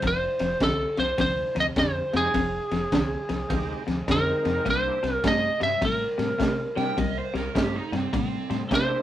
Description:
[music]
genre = electric blues shuffle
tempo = 104 BPM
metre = 4/4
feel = swing 64% on 8ths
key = unclear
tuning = A4 = 439 Hz
[part]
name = lightly driven lead guitar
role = melody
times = 0.0-9.0 s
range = Ab4 to E5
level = -26 LUFS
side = equal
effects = none
[part]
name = electric guitar at the edge of break-up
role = riff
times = 0.0-9.0 s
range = F2 to A3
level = -29 LUFS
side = left 2 dB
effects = phaser
[part]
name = deep dub fingered electric bass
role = bass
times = 0.0-8.9 s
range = F1 to C3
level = -34 LUFS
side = equal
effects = none
[part]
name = crunchy breakbeat drum kit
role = drums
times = 0.0-8.9 s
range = kick drum, ride cymbal, snare drum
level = -29 LUFS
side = right 1 dB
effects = none
[part]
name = overdriven tonewheel organ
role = accompaniment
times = 2.1-9.0 s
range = Ab3 to Bb4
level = -33 LUFS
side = right 2 dB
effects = slow rotary speaker, chorus vibrato
[part]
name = overdriven slide guitar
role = second line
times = 6.8-8.6 s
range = C4 to G5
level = -31 LUFS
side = right 4 dB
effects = none
[sound]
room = moderate studio ambience, RT60 0.5 s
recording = rough rehearsal-room recording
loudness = -23 LUFS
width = side -12 dB against mid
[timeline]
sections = 0.0-9.0 A section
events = none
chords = 0.0 F5; 2.3 Fm7; 4.7 C7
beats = | 0.03 0.61 1.19 1.77 | 2.35 2.93 3.50 4.08 | 4.66 5.24 5.82 6.40 | 6.97 7.55 8.13 8.71

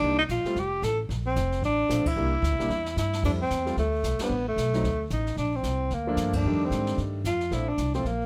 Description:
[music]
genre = jazz, small-group swing and bop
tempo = 224 BPM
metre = 4/4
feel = swing 59% on 8ths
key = F major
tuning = A4 = 440 Hz
[part]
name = breathy tenor saxophone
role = melody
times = 0.0-8.3 s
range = A3 to A4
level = -30 LUFS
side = equal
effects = none
[part]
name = clear concert grand piano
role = accompaniment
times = 0.0-8.0 s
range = Eb3 to F4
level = -34 LUFS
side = equal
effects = none
[part]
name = upright bass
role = bass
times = 0.0-8.3 s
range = F1 to Ab2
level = -32 LUFS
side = equal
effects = none
[part]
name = jazz brush drum kit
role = drums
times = 0.0-8.3 s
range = brushed snare drum, crash cymbal, hi-hat, kick drum, ride cymbal, snare drum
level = -40 LUFS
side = equal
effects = none
[sound]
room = light reverb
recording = none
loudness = -27 LUFS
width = mono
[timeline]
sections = 0.0-3.2 A section; 3.2-8.3 B section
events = band accent 2.0, 4.2, 6.3; drum fill 2.7-3.2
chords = 0.0 Cm7; 0.6 F; 1.1 Bbmaj7; 2.2 C7; 3.2 Fmaj9; 4.3 Amadd9; 4.8 D5; 5.4 Gm9; 6.4 F13; 7.5 Bbmaj9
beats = | 0.03 0.29 0.56 0.83 | 1.10 1.37 1.63 1.90 | 2.17 2.44 2.70 2.97 | 3.24 3.51 3.77 4.04 | 4.31 4.58 4.84 5.11 | 5.38 5.65 5.91 6.18 | 6.45 6.71 6.98 7.25 | 7.52 7.78 8.05

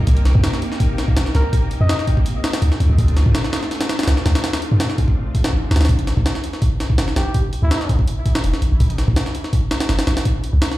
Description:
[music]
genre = drum and bass, jungle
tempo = 165 BPM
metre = 4/4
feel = straight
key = A minor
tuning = A4 = 440 Hz
[part]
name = soft string machine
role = sustained chords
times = 0.0-5.9 s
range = A3 to G4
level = -29 LUFS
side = equal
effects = ensemble chorus
[part]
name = long sustained 808-style bass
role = bass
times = 0.0-10.6 s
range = E1 to G2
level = -16 LUFS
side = equal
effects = none
[part]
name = jungle sampler-style drum kit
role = drums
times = 0.1-10.8 s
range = hi-hat, kick drum, snare drum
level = -18 LUFS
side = equal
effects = none
[part]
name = trumpet with bucket mute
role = melody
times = 1.3-2.1, 7.2-8.0 s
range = E4 to Eb5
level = -30 LUFS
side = equal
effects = dub echo
[sound]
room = digital ambience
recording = played on a big sound system in a bare room, large studio reverb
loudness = -16 LUFS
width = side -16 dB against mid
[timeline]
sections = 0.0-5.9 A section; 5.9-10.8 A section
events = drop 0.0-5.9, 5.9-10.8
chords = 0.0 Cm7; 2.3 Dm7; 5.9 A5; 10.3 N.C.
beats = | 0.07 0.44 0.80 1.17 | 1.53 1.89 2.26 2.62 | 2.98 3.35 3.71 4.07 | 4.44 4.80 5.17 5.53 | 5.89 6.26 6.62 6.98 | 7.35 7.71 8.07 8.44 | 8.80 9.16 9.53 9.89 | 10.26 10.62

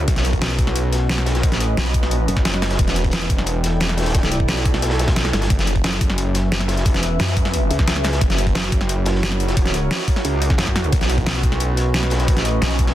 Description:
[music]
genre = dark technical drum and bass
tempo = 177 BPM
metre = 4/4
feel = straight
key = F# phrygian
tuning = A4 = 440 Hz
[part]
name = metallic wobble bass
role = bass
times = 0.0-12.6 s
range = E1 to F#2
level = -20 LUFS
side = equal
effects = distortion, chorus
[part]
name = warbly tape-like pad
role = texture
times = 0.0-12.9 s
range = C#4 to G5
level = -26 LUFS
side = right 1 dB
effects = chorus, built-in reverb, sidechain pumping
[part]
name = snarling distorted saw bass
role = bass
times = 0.1-3.1, 5.5-8.5, 10.9-12.9 s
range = E1 to F#2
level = -21 LUFS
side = equal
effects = overdrive, sidechain pumping
[part]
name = crunchy breakbeat drum kit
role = drums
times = 0.1-12.9 s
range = hi-hat, snare drum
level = -30 LUFS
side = equal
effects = none
[part]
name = dubstep drum kit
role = drums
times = 0.1-12.9 s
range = hi-hat, snare drum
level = -23 LUFS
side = equal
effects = overdrive
[part]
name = electronic kick drum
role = drums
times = 0.1-12.9 s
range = none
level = -19 LUFS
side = equal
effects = none
[sound]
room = digital ambience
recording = dense, heavily limited modern master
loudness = -16 LUFS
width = side -13 dB against mid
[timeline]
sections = 0.0-12.9 A section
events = none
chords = 0.1 Badd9; 2.8 Em; 5.5 F#m7; 10.9 Badd9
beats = | 0.08 0.42 0.76 1.09 | 1.43 1.77 2.11 2.45 | 2.79 3.13 3.47 3.81 | 4.15 4.49 4.82 5.16 | 5.50 5.84 6.18 6.52 | 6.86 7.20 7.54 7.88 | 8.21 8.55 8.89 9.23 | 9.57 9.91 10.25 10.59 | 10.93 11.27 11.60 11.94 | 12.28 12.62

